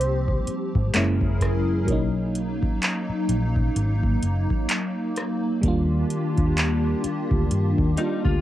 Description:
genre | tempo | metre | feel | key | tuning
contemporary R&B | 64 BPM | 4/4 | swing 58% on 16ths | unclear | A4 = 440 Hz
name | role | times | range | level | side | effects
warm velvety synth lead | melody | 0.0-0.9 s | C5 | -30 LUFS | right 2 dB | chorus, cassette tape, analog delay
FM electric piano with auto-pan | accompaniment | 0.0-8.4 s | F#3 to F4 | -29 LUFS | equal | phaser, cassette tape
hollow soft pad | sustained chords | 0.0-8.4 s | Eb3 to Bb4 | -27 LUFS | equal | ensemble chorus, cassette tape
vintage muted fingered electric bass | bass | 0.0-8.4 s | Gb1 to G2 | -24 LUFS | equal | none
booming analog drum machine | drums | 0.0-8.4 s | handclaps, hi-hat, kick drum, rim click | -25 LUFS | equal | overdrive, cassette tape
direct-recorded clean electric guitar | arpeggios | 8.0-8.4 s | G3 to F4 | -29 LUFS | left 5 dB | ensemble chorus, cassette tape
room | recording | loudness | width
little or no reverb | home recording on cassette | -21 LUFS | side -13 dB against mid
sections
0.0-8.4 A section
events
none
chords
0.0 Abmaj7; 0.9 Gb7; 1.9 Bmaj7; 5.6 Ebmaj7

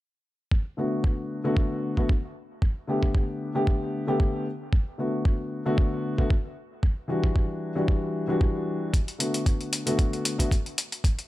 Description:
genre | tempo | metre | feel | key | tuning
nu-disco, nu disco | 114 BPM | 4/4 | swing 54% on 16ths | B minor | A4 = 440 Hz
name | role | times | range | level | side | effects
electronic kick drum | drums | 0.5-11.2 s | none | -23 LUFS | equal | studio reverb
dark grand piano | accompaniment | 0.8-10.5 s | D3 to G4 | -27 LUFS | left 1 dB | sidechain pumping, dub echo
electronic hi-hat | drums | 8.9-11.3 s | none | -30 LUFS | left 2 dB | studio reverb
room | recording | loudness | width
studio reverb | none | -24 LUFS | side -16 dB against mid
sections
0.5-11.3 A section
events
none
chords
0.5 Bm7; 2.4 A9sus4; 4.5 Bm7; 6.8 Em9; 8.9 Bm7

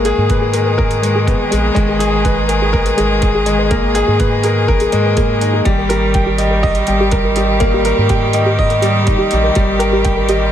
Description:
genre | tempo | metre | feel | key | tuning
piano and strings electronica | 123 BPM | 4/4 | straight | G# harmonic minor | A4 = 440 Hz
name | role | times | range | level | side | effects
rich string quartet | sustained chords | 0.0-10.5 s | D#3 to G#4 | -20 LUFS | equal | sidechain pumping
bright baby grand piano | riff | 0.0-10.5 s | G3 to G5 | -15 LUFS | left 1 dB | ping-pong delay
round analog bass | bass | 0.0-10.5 s | G#1 to G#2 | -18 LUFS | right 1 dB | sidechain pumping
soft round pluck | arpeggios | 0.1-10.3 s | G4 to G#5 | -23 LUFS | equal | none
electronic hi-hat | drums | 0.1-10.4 s | none | -27 LUFS | right 2 dB | overdrive
electronic kick drum | drums | 0.3-10.2 s | none | -18 LUFS | right 1 dB | overdrive
room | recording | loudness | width
light reverb, studio ambience | none | -12 LUFS | side -10 dB against mid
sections
0.0-10.5 A section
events
none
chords
0.0 G#madd9; 5.7 D#/G#

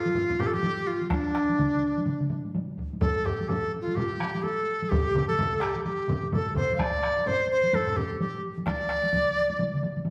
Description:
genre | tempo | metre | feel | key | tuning
japanese traditional, taiko drum ensemble | 127 BPM | 4/4 | swing 60% on 16ths | G suspended pentatonic | A4 = 439 Hz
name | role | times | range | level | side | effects
bright large dizi | melody | 0.0-10.0 s | D4 to F5 | -29 LUFS | equal | none
taiko ensemble | percussion | 0.1-10.1 s | none | -35 LUFS | equal | none
taiko ensemble | percussion | 0.2-8.1 s | none | -36 LUFS | equal | none
taiko ensemble | percussion | 1.1-10.0 s | none | -36 LUFS | equal | none
taiko ensemble | percussion | 1.1-9.3 s | none | -36 LUFS | equal | none
room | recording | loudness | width
wet large studio reverb, RT60 1.5 s | band playing live in one room | -27 LUFS | mono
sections
0.0-10.1 A section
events
speeding up 0.0-10.1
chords
none

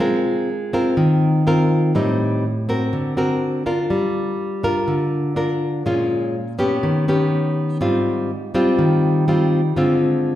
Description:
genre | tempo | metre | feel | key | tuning
bossa nova | 123 BPM | 4/4 | straight | unclear | A4 = 440 Hz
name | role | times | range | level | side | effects
nylon-string guitar | solo | 0.0-10.4 s | Ab2 to Bb4 | -17 LUFS | equal | none
room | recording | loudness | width
wet recital hall reverb, RT60 1.4 s | recorded in a church or concert hall | -17 LUFS | side -13 dB against mid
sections
0.0-10.4 A section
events
none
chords
0.0 Ab69; 2.0 Am7b5; 2.9 D7alt; 3.9 Gm7; 5.9 Bbm7; 6.8 Ebaug7; 7.8 Ab6; 9.8 Dm7b5

